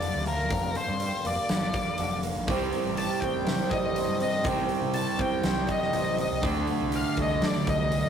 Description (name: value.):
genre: quiet-loud alternative rock.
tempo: 122 BPM.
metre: 4/4.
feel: straight.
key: G minor.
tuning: A4 = 440 Hz.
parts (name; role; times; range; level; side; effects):
octave-fuzz lead guitar; melody; 0.0-8.1 s; Bb4 to A5; -31 LUFS; left 3 dB; distortion.
picked old ladder-braced acoustic guitar; arpeggios; 0.0-8.1 s; G2 to C4; -32 LUFS; right 1 dB; none.
growling picked electric bass; bass; 0.0-8.1 s; F1 to D3; -34 LUFS; left 1 dB; overdrive.
huge arena drum kit; drums; 0.0-8.0 s; hi-hat, kick drum, snare drum; -32 LUFS; left 1 dB; none.
overdriven semi-hollow guitar; riff; 2.5-8.1 s; C3 to D4; -28 LUFS; right 4 dB; none.
room: moderate stone room reverb, RT60 1.0 s.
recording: rough rehearsal-room recording, tube saturation.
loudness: -25 LUFS.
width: side -8 dB against mid.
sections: 0.0-8.1 A section.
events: none.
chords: 0.0 Gm; 2.5 Cm; 6.4 Dsus4.